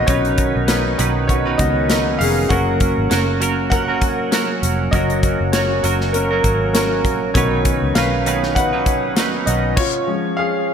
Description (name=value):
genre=piano-driven pop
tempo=99 BPM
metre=4/4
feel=swing 56% on 16ths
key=F# major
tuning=A4 = 437 Hz
part: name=clear baby grand piano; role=accompaniment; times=0.0-10.7 s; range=D#3 to F#5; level=-20 LUFS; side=left 2 dB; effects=lush chorus
part: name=bright tonewheel organ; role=sustained chords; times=0.0-9.8 s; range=D#3 to C#4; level=-27 LUFS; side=right 2 dB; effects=stopped rotary speaker
part: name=direct-recorded clean electric guitar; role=riff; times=0.0-10.3 s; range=B2 to B4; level=-22 LUFS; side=right 6 dB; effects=analog chorus
part: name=vintage muted fingered electric bass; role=bass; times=0.0-9.8 s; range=E#1 to C#2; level=-22 LUFS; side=equal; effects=none
part: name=modern studio drum kit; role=drums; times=0.1-9.9 s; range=crash cymbal, hi-hat, kick drum, snare drum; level=-21 LUFS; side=left 1 dB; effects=gated reverb
room=wet lush hall reverb, RT60 2.6 s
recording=bright 1980s-style digital production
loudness=-15 LUFS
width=side -7 dB against mid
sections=0.0-10.7 A section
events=grand piano solo 0.0-10.7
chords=0.0 Badd9; 2.5 F#; 7.3 Badd9; 9.8 C#